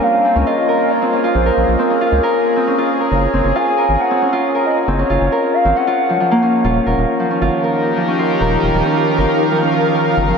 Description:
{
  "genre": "IDM",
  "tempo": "136 BPM",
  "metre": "4/4",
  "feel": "straight",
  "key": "unclear",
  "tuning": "A4 = 440 Hz",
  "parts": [
    { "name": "warbly nostalgic lead", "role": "melody", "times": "0.0-6.4 s", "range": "Bb4 to Ab5", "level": "-18 LUFS", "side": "left 1 dB", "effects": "wide subtle chorus, tape echo" },
    { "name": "warbly tape-like pad", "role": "sustained chords", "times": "0.0-10.4 s", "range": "Eb3 to F5", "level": "-19 LUFS", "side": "equal", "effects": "chorus, built-in reverb, phaser, vintage 12-bit sampler grit" },
    { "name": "Celtic harp", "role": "arpeggios", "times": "0.0-10.4 s", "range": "F3 to Bb4", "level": "-17 LUFS", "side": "right 1 dB", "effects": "diffuse ambient delay" },
    { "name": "round analog bass", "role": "bass", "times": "0.4-10.3 s", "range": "Eb1 to Db2", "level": "-18 LUFS", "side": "equal", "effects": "none" }
  ],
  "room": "wet huge ambient reverb, RT60 8.5 s",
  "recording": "dreamy mix soaked in reverb",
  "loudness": "-13 LUFS",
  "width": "side -6 dB against mid",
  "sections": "0.0-10.4 A section",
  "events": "none",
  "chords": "0.0 Bbm7; 3.1 Gbsus2; 6.6 Ebadd9"
}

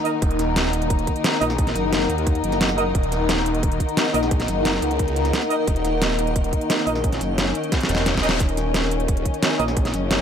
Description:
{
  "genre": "dark technical drum and bass",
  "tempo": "176 BPM",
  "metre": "4/4",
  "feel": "straight",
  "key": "Eb minor",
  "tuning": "A4 = 440 Hz",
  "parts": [
    { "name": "dark studio string section", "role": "sustained chords", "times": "0.0-10.2 s", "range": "Eb3 to Eb4", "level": "-26 LUFS", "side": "left 3 dB", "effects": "sidechain pumping" },
    { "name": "granular cloud pad", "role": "texture", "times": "0.0-10.2 s", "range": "Eb4 to Ab5", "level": "-26 LUFS", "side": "left 2 dB", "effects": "built-in reverb, sidechain pumping" },
    { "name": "bright brass ensemble", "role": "stabs", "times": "0.1-9.6 s", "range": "Eb4 to Eb5", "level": "-29 LUFS", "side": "right 4 dB", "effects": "tape echo" },
    { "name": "dubstep drum kit", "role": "drums", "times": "0.1-10.2 s", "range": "hi-hat, snare drum", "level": "-23 LUFS", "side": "right 1 dB", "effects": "none" },
    { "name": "phased detuned saw bass", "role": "bass", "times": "0.2-9.2 s", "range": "Eb1 to Db2", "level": "-25 LUFS", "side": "equal", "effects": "phaser, tube saturation, sidechain pumping" },
    { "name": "electronic kick drum", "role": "drums", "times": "0.2-9.8 s", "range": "none", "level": "-22 LUFS", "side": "equal", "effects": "none" },
    { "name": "metallic wobble bass", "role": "bass", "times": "1.4-4.8, 6.9-7.5, 9.6-10.2 s", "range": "Gb1 to Eb2", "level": "-25 LUFS", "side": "equal", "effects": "chorus" },
    { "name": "reverse cymbal", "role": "sound effects", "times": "7.9-8.4 s", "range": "none", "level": "-32 LUFS", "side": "left 7 dB", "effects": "none" }
  ],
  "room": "light reverb",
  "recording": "none",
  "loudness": "-19 LUFS",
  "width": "side -8 dB against mid",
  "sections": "0.0-10.2 A section",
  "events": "drum fill 7.7-8.4; reverse cymbal 7.9-8.4",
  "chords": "0.0 Ebm"
}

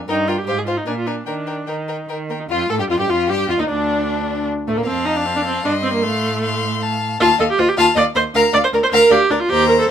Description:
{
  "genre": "quick classical-period movement for string quartet",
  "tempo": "154 BPM",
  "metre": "3/4",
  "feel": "rubato",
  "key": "unclear",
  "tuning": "A4 = 440 Hz",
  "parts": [
    { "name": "clear cello", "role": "bass", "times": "0.0-9.9 s", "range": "D2 to Eb3", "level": "-24 LUFS", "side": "right 4 dB", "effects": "none" },
    { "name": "rich violin", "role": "melody", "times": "0.1-9.9 s", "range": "A3 to C6", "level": "-23 LUFS", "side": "left 8 dB", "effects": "none" },
    { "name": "clear violin", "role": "second line", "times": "0.1-9.9 s", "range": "A3 to F5", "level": "-23 LUFS", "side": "left 4 dB", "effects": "none" },
    { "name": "rich viola", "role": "accompaniment", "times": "0.1-9.9 s", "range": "A3 to D5", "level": "-18 LUFS", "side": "right 2 dB", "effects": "none" }
  ],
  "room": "moderate studio reverb, RT60 0.8 s",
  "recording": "minimal, uncompressed stereo recording",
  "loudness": "-15 LUFS",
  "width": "side -9 dB against mid",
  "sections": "0.0-2.5 A section; 2.5-9.9 B section",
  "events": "none",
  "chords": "0.1 Eb/G; 0.5 Fm/Ab; 0.9 Bb7; 1.3 Eb; 2.5 Ebadd9 (rootless); 3.7 N.C.; 4.9 F; 6.0 F/A; 7.2 F7/Eb; 8.3 Bb/D; 9.5 Cm7/Eb"
}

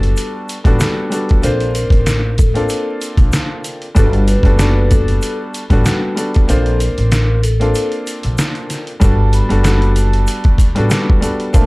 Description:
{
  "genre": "hip hop, boom-bap hip-hop",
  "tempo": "95 BPM",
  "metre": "4/4",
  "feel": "swing 54% on 16ths",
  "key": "G major",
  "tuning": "A4 = 440 Hz",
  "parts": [
    { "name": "vibraphone with soft mallets", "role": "melody", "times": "0.0-11.7 s", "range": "A4 to B5", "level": "-25 LUFS", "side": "left 1 dB", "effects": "tape echo" },
    { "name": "warm upright piano", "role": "accompaniment", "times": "0.0-11.7 s", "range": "G3 to C5", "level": "-19 LUFS", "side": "left 1 dB", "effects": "cassette tape" },
    { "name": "upright bass", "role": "bass", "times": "0.0-11.7 s", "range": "F#1 to Bb1", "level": "-15 LUFS", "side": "equal", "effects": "none" },
    { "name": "trip hop sampler-style drum kit", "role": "drums", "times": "0.0-11.7 s", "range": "hi-hat, kick drum, snare drum", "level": "-15 LUFS", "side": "equal", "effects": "none" },
    { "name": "tube shaker", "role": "percussion", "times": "0.2-11.7 s", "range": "none", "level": "-32 LUFS", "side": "equal", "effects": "none" }
  ],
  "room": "little or no reverb",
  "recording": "dry, gritty hardware recording, vinyl crackle",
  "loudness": "-12 LUFS",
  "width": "side -23 dB against mid",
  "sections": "0.0-9.0 A section; 9.0-11.7 B section",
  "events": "break 6.5-9.0",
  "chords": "0.0 Gmaj9; 1.4 Bbmaj9; 4.0 Gmaj9; 6.5 Bbmaj9; 9.0 Gmaj9"
}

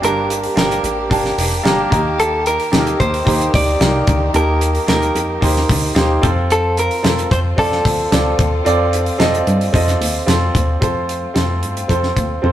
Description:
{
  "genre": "piano-driven pop",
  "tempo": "111 BPM",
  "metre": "4/4",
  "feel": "straight",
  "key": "unclear",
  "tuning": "A4 = 440 Hz",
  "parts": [
    { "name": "direct-recorded clean electric guitar", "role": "melody", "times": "0.0-10.2 s", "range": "A4 to D5", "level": "-20 LUFS", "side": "equal", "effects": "none" },
    { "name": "bright concert grand piano", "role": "accompaniment", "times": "0.0-12.5 s", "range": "G2 to A5", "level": "-19 LUFS", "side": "right 1 dB", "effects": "none" },
    { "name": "warm studio string section", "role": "sustained chords", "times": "0.0-12.5 s", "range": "Eb3 to Bb4", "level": "-28 LUFS", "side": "left 3 dB", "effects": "none" },
    { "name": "plucky analog bass", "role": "bass", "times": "0.0-12.5 s", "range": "F1 to G2", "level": "-20 LUFS", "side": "equal", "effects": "none" },
    { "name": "damped 70s drum kit", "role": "drums", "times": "0.0-12.5 s", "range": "hi-hat, kick drum, snare drum, toms", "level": "-18 LUFS", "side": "equal", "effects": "none" }
  ],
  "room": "moderate stone room reverb, RT60 0.9 s",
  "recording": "rough rehearsal-room recording, tube saturation",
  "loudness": "-14 LUFS",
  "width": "side -12 dB against mid",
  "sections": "0.0-10.8 A section; 10.8-12.5 B section",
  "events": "none",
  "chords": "0.0 Bb; 1.9 Eb; 6.2 F"
}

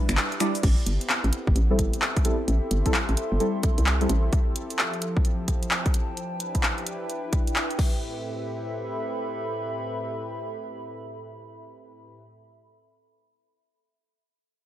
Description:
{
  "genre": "UK garage, two-step garage",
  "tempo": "130 BPM",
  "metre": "4/4",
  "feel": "swing 64% on 16ths",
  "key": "A minor",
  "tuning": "A4 = 442 Hz",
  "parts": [
    { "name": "string-like resonator pluck", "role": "melody", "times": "0.0-0.6 s", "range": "none", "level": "barely audible", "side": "none", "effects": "none" },
    { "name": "warm analog pad", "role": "sustained chords", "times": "0.0-12.2 s", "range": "A2 to B4", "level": "-37 LUFS", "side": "left 1 dB", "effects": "chorus, sidechain pumping" },
    { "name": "deep mellow chord stab", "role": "stabs", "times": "0.0-4.1 s", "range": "G3 to D5", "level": "-29 LUFS", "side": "equal", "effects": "chorus, tape echo" },
    { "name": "hollow knocking FM bass", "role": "bass", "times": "0.1-4.3 s", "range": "G1 to C2", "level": "-23 LUFS", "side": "equal", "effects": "sidechain pumping" },
    { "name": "house drum kit", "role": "drums", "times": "0.1-7.9 s", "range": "cabasa, crash cymbal, finger snaps, handclaps, hi-hat", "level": "-27 LUFS", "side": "equal", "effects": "overdrive" },
    { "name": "electronic kick drum", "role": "drums", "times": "0.6-7.9 s", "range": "none", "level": "-24 LUFS", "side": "equal", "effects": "overdrive" },
    { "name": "warbly tape-like pad", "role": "texture", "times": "1.4-12.5 s", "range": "F3 to C6", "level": "-34 LUFS", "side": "right 1 dB", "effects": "chorus, built-in reverb, sidechain pumping" }
  ],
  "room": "light reverb",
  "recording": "none",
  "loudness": "-23 LUFS",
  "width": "side -13 dB against mid",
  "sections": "0.6-8.0 A section; 8.0-11.7 B section",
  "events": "band accent 0.2",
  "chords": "0.0 Em7; 0.6 Am7; 4.3 Fmaj9; 6.2 Em7; 7.8 Am7"
}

